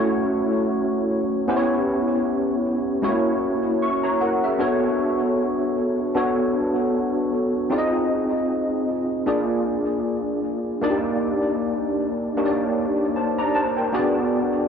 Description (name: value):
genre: soul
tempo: 77 BPM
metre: 4/4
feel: swing 58% on 16ths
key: unclear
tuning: A4 = 440 Hz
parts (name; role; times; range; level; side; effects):
- overdriven tine electric piano; solo; 0.0-14.7 s; G#3 to C#6; -20 LUFS; equal; ensemble chorus, tape echo
room: light reverb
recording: dry, close 1970s-style studio recording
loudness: -20 LUFS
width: side -7 dB against mid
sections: 0.0-14.7 A section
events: none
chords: 0.0 F#m7; 1.5 C#m7b5; 3.0 F#7; 4.6 Bm9; 7.7 Fm7; 9.3 A#7; 10.8 D#maj7; 13.9 G#m7b5